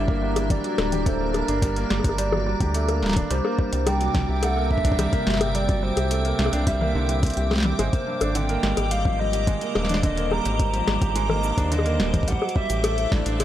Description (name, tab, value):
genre	IDM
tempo	107 BPM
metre	4/4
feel	straight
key	unclear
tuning	A4 = 440 Hz
part	warbly nostalgic lead	melody	0.0-13.4 s	Bb4 to Bb5	-29 LUFS	equal	wide subtle chorus, tape echo
part	icy glass pad	sustained chords	0.0-13.4 s	A2 to Bb5	-30 LUFS	left 1 dB	chorus, built-in reverb, vintage 12-bit sampler grit
part	felt-muted upright piano	arpeggios	0.0-13.4 s	G2 to G4	-28 LUFS	right 3 dB	tape echo
part	round analog bass	bass	0.0-13.4 s	D1 to Eb2	-26 LUFS	equal	none
part	bubbling stepped-filter texture	texture	0.0-13.4 s	D6	-37 LUFS	right 1 dB	chorus, built-in reverb, sidechain pumping
part	electronic kick drum	drums	0.1-13.2 s	none	-23 LUFS	equal	none
part	booming analog drum machine	drums	0.4-13.4 s	bongos, hi-hat, shaker, snare drum, toms	-27 LUFS	left 2 dB	overdrive
room	digital ambience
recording	dry, gritty hardware recording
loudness	-20 LUFS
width	side -12 dB against mid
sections	0.0-13.4 A section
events	none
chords	0.0 Gm; 3.3 C; 7.8 Abadd9; 12.3 Am